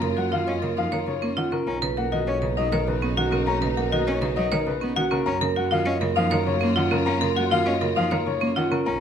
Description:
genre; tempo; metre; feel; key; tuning
classical, minimalist pattern music; 100 BPM; 3/4; straight; F# major; A4 = 439 Hz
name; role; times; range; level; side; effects
dark grand piano; melody; 0.0-9.0 s; A#4 to A#5; -27 LUFS; left 8 dB; none
rich cello; accompaniment; 0.0-9.0 s; C#3 to C#4; -28 LUFS; right 1 dB; none
warm studio string section; sustained chords; 0.0-9.0 s; A#3 to E#4; -32 LUFS; left 3 dB; none
marimba with hard mallets; arpeggios; 0.0-8.9 s; C#4 to C#5; -26 LUFS; right 4 dB; none
rich double bass; bass; 0.0-9.0 s; B1 to F#2; -30 LUFS; right 2 dB; none
room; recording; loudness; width
moderate recital hall reverb, RT60 1.4 s; close, detailed microphones; -21 LUFS; side -8 dB against mid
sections
0.0-9.0 A section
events
none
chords
0.0 F#maj7; 1.7 Bmaj7; 5.3 F#maj7

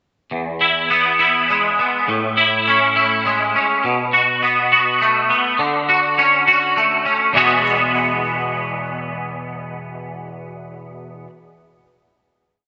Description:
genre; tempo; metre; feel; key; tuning
post-rock; 103 BPM; 3/4; straight; E major; A4 = 441 Hz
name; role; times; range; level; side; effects
twangy electric guitar; solo; 0.3-11.3 s; E2 to F#4; -17 LUFS; equal; ensemble chorus, slapback echo, tape echo
room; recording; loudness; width
wet lush hall reverb, RT60 1.6 s; big arena sound, nothing above 8.0 kHz; -16 LUFS; mono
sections
0.3-7.3 A section; 7.3-10.8 final chord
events
none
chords
0.3 E; 2.1 Amaj7; 3.8 B5; 5.6 Dmaj7; 7.3 Eadd9

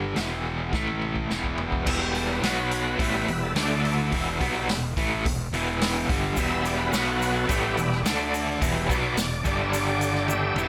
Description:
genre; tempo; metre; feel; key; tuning
classic rock; 107 BPM; 4/4; straight; E minor; A4 = 438 Hz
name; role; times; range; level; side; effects
crunchy overdriven guitar; riff; 0.0-10.7 s; E2 to D4; -31 LUFS; equal; tremolo
distorted electric guitar; riff; 0.0-10.7 s; E2 to D4; -32 LUFS; equal; distortion
fuzz fingered electric bass; bass; 0.0-10.7 s; E1 to D2; -34 LUFS; equal; overdrive
vintage drum kit; drums; 0.2-10.7 s; crash cymbal, hi-hat, kick drum, snare drum, toms; -32 LUFS; equal; none
bright tonewheel organ; sustained chords; 1.9-10.7 s; D3 to E5; -31 LUFS; equal; slow rotary speaker, overdrive, chorus vibrato
tube shaker; percussion; 6.4-10.7 s; none; -42 LUFS; equal; none
room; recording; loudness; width
moderate echo chamber reverb, RT60 1.4 s; none; -25 LUFS; mono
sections
0.0-1.9 A section; 1.9-10.7 B section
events
drum fill 0.7-1.9, 10.3-10.7; tonewheel organ solo 1.9-10.7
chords
0.2 E5; 0.7 A5; 1.3 E5; 1.9 Em; 2.4 B5; 3.0 Em; 3.6 D5; 4.1 Em; 6.9 B5; 7.5 Em; 8.1 D5; 8.6 Em; 9.4 G5

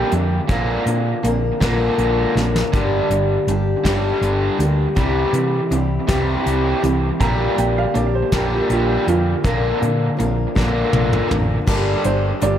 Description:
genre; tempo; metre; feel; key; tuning
folk rock and heartland rock; 54 BPM (dotted quarters); 6/8; straight; G dorian; A4 = 440 Hz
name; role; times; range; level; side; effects
warm upright piano; second line; 0.0-1.6, 7.2-12.6 s; F4 to Bb5; -24 LUFS; right 6 dB; analog delay
picked swing-style acoustic guitar; accompaniment; 0.0-12.6 s; G2 to Bb4; -22 LUFS; left 3 dB; analog delay
raw garage guitar; riff; 0.0-12.6 s; G2 to Bb3; -21 LUFS; right 2 dB; overdrive, analog delay
hollow-body short-scale fingered electric bass; bass; 0.1-12.6 s; G1 to C3; -21 LUFS; equal; none
soft brush drum kit; drums; 0.1-12.6 s; crash cymbal, hi-hat, kick drum, snare drum, toms; -23 LUFS; equal; none
room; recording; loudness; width
studio reverb; echo-heavy mix; -16 LUFS; side -10 dB against mid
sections
0.0-11.7 A section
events
drum fill 2.4-2.7, 10.6-11.7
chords
0.5 Bb; 2.7 Gm; 5.0 C; 7.2 Gm/Bb; 9.4 Bb; 11.7 Gm

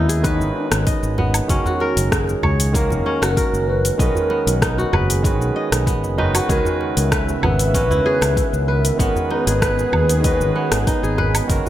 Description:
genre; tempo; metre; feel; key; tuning
organic downtempo; 96 BPM; 4/4; straight; unclear; A4 = 440 Hz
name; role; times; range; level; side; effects
mellow bass bansuri; melody; 0.0-11.2 s; D#4 to B4; -23 LUFS; equal; ping-pong delay
barky tine electric piano; accompaniment; 0.0-11.7 s; D#3 to B4; -25 LUFS; right 3 dB; sidechain pumping, ping-pong delay
kora; arpeggios; 0.0-11.7 s; A#3 to D#5; -25 LUFS; equal; ping-pong delay
fretless electric bass; bass; 0.0-11.6 s; F#1 to D#2; -20 LUFS; equal; tube saturation, sidechain pumping
afro-pop drum kit; drums; 0.1-11.7 s; hi-hat, rim click, shaker, woodblock; -24 LUFS; equal; studio ambience, gated reverb
electronic kick drum; drums; 0.2-11.6 s; none; -21 LUFS; equal; studio ambience
djembe; percussion; 1.0-11.7 s; none; -26 LUFS; right 1 dB; none
warm analog pad; sustained chords; 6.5-11.7 s; C#3 to E5; -27 LUFS; right 1 dB; chorus, vintage 12-bit sampler grit, sidechain pumping
room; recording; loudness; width
light reverb, digital ambience; bright 1980s-style digital production; -16 LUFS; side -12 dB against mid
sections
0.0-11.7 A section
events
none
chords
0.0 G#m; 1.5 F#; 6.5 C#m7

